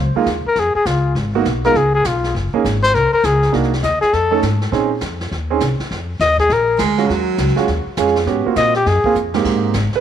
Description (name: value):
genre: jazz, small-group swing and bop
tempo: 202 BPM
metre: 4/4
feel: swing 63% on 8ths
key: unclear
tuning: A4 = 440 Hz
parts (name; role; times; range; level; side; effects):
- upright bass; bass; 0.0-10.0 s; Gb1 to Bb2; -20 LUFS; left 1 dB; none
- clear baby grand piano; accompaniment; 0.2-10.0 s; Ab2 to Cb5; -18 LUFS; right 7 dB; none
- jazz brush drum kit; drums; 0.3-10.0 s; brushed snare drum, crash cymbal, hi-hat, kick drum, snare drum; -27 LUFS; equal; none
- warm trumpet; melody; 0.5-9.2 s; F4 to Eb5; -16 LUFS; left 3 dB; tape echo
- bright baritone saxophone; second line; 6.8-7.7 s; Gb3 to Ab3; -19 LUFS; right 5 dB; tape echo
room: moderate echo chamber reverb, RT60 1.3 s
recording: 1960s-style stereo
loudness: -14 LUFS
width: side -9 dB against mid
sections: 0.0-9.5 A section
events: drum fill 9.2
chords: 0.0 Dbadd9; 1.2 Abm7; 1.8 Db7; 2.3 Gbadd9; 3.5 Cm7b5; 4.1 F7alt; 4.7 Bbm11; 5.9 Ebsus2; 6.5 Bb7alt; 7.1 Ebm11; 8.3 Ab13; 9.5 Abmaj9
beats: 0.27 0.56 0.86 | 1.16 1.46 1.75 2.05 | 2.35 2.64 2.94 3.24 | 3.53 3.83 4.13 4.42 | 4.72 5.02 5.31 5.61 | 5.91 6.20 6.50 6.79 | 7.09 7.39 7.68 7.98 | 8.27 8.57 8.86 9.16 | 9.45 9.75